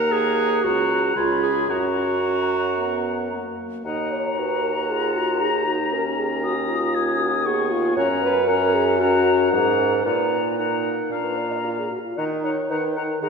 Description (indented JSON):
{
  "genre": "quick classical-period movement for wind quintet",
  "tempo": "115 BPM",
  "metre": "4/4",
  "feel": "straight",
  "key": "F# major, Eb minor from 3.9 s",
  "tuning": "A4 = 439 Hz",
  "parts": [
    { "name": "hollow concert flute", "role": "melody", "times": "0.0-13.3 s", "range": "Bb5 to Eb6", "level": "-27 LUFS", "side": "left 7 dB", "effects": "none" },
    { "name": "clear oboe", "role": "second line", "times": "0.0-13.3 s", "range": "F5 to Bb5", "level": "-29 LUFS", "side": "left 2 dB", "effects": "none" },
    { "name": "mellow French horn", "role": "accompaniment", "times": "0.0-13.3 s", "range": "A#3 to Eb5", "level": "-25 LUFS", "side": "equal", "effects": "none" },
    { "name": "warm clarinet", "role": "accompaniment", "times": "0.0-13.3 s", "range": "Cb4 to A#4", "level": "-26 LUFS", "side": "right 4 dB", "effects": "none" },
    { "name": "mellow bassoon", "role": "bass", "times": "0.0-13.3 s", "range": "C#2 to Eb3", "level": "-25 LUFS", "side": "right 1 dB", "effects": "none" }
  ],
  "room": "wet concert hall reverb, RT60 2.0 s",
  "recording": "recorded in a church or concert hall",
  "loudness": "-19 LUFS",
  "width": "side -5 dB against mid",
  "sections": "0.0-3.9 A section; 3.9-13.3 B section",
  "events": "none",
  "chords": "0.0 D#m; 0.6 F#/C#; 1.2 C#7; 1.7 F#; 3.9 Ebm; 8.0 Gb; 10.1 Ebm/Bb; 11.1 Bb; 12.2 Ebm"
}